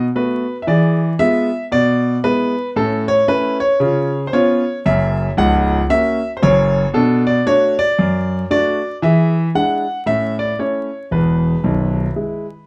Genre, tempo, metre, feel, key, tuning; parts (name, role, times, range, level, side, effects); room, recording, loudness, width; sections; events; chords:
jazz, stride piano; 115 BPM; 4/4; swing 62% on 8ths; A4 = 440 Hz
clear concert grand piano; solo; 0.0-12.7 s; B0 to F#5; -17 LUFS; equal
wet club reverb, RT60 0.6 s; heard from further back in the room, vinyl crackle; -17 LUFS; mono
0.0-12.7 A section
0.0 B7(no3); 0.7 E7b9; 1.7 E7/B; 2.8 A; 3.8 C#7; 4.8 F#7; 6.9 Bm7; 9.0 E7; 10.1 A; 11.1 E